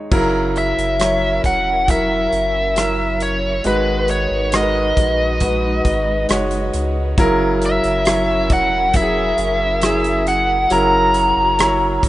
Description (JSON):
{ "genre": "pop ballad", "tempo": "68 BPM", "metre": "4/4", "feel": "straight", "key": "unclear", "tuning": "A4 = 441 Hz", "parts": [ { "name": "clear concert grand piano", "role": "accompaniment", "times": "0.0-12.1 s", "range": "G#2 to C#5", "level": "-20 LUFS", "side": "equal", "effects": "none" }, { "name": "warm studio string section", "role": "sustained chords", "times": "0.1-12.1 s", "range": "F#3 to B4", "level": "-27 LUFS", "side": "left 1 dB", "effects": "none" }, { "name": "warm sub bass", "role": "bass", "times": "0.1-12.1 s", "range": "E1 to C#2", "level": "-24 LUFS", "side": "equal", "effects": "none" }, { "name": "natural country drum kit", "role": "drums", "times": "0.1-12.1 s", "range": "crash cymbal, hi-hat, kick drum, rim click", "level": "-21 LUFS", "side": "equal", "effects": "none" }, { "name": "biting lead guitar", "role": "melody", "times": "0.6-12.1 s", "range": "B4 to A#5", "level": "-18 LUFS", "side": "equal", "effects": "overdrive" } ], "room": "light reverb", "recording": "rough home demo mix, nothing above 10.3 kHz", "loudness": "-14 LUFS", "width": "side -15 dB against mid", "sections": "0.1-12.1 A section", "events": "none", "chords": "0.1 F#7; 3.6 G#m7; 7.2 F#7", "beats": "| 0.12 1.00 1.88 2.76 | 3.65 4.53 5.41 6.29 | 7.17 8.06 8.94 9.82 | 10.70 11.59" }